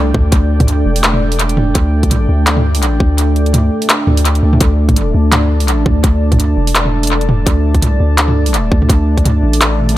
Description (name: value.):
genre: half-time drum and bass.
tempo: 168 BPM.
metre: 4/4.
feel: swing 56% on 16ths, half-time.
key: unclear.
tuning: A4 = 440 Hz.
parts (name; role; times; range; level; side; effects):
dark analog pad; sustained chords; 0.0-10.0 s; A3 to A5; -18 LUFS; equal; chorus, vintage 12-bit sampler grit, sidechain pumping.
long sustained 808-style bass; bass; 0.0-10.0 s; E1 to D2; -13 LUFS; equal; none.
drum and bass drum kit; drums; 0.1-10.0 s; handclaps, hi-hat, toms; -16 LUFS; equal; overdrive, tape echo.
electronic kick drum; drums; 0.1-9.2 s; none; -13 LUFS; equal; overdrive.
room: little or no reverb.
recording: echo-heavy mix.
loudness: -10 LUFS.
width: side -15 dB against mid.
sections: 0.0-10.0 A section.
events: kick drops out 3.2-4.6.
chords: 0.0 D5.